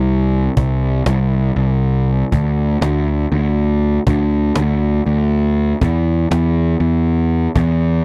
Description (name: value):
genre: psychedelic rock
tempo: 240 BPM (eighths)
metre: 7/8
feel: straight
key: unclear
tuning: A4 = 440 Hz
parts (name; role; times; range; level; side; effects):
- fuzz picked electric bass; bass; 0.0-8.0 s; C2 to E2; -13 LUFS; equal; overdrive
- cajon; drums; 0.1-7.9 s; none; -18 LUFS; equal; none
room: small room ambience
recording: dry, close 1970s-style studio recording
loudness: -13 LUFS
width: side -36 dB against mid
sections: 0.0-8.0 A section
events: kick and snare drop out 5.1-5.8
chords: none